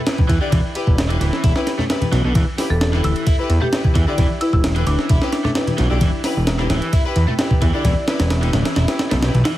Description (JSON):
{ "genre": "breakbeat, breaks", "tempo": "131 BPM", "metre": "4/4", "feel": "straight", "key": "E minor pentatonic", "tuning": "A4 = 439 Hz", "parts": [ { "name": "dark chamber string section", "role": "stabs", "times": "0.1-9.3 s", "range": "E4 to D5", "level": "-25 LUFS", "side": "left 2 dB", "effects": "tape echo" }, { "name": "breakbeat sampler-style drum kit", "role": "drums", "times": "0.1-9.6 s", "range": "hi-hat, kick drum, ride cymbal, snare drum", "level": "-19 LUFS", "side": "equal", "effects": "none" }, { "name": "congas", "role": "percussion", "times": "0.2-9.4 s", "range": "none", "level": "-25 LUFS", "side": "left 2 dB", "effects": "none" }, { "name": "overdriven electric guitar", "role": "riff", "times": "0.3-9.6 s", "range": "D3 to E4", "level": "-27 LUFS", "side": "equal", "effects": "tape echo" }, { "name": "fat analog bass", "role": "bass", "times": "0.3-9.4 s", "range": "D1 to E2", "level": "-18 LUFS", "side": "equal", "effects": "none" }, { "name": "marimba with medium hard mallets", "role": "melody", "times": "2.7-5.5 s", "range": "D4 to A4", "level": "-25 LUFS", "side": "equal", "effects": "AM radio sound, tape echo" } ], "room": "light reverb", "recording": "heavily compressed radio sound, multiband compression", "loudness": "-15 LUFS", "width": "side -14 dB against mid", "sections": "0.0-9.6 A section", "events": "none", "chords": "0.0 Em" }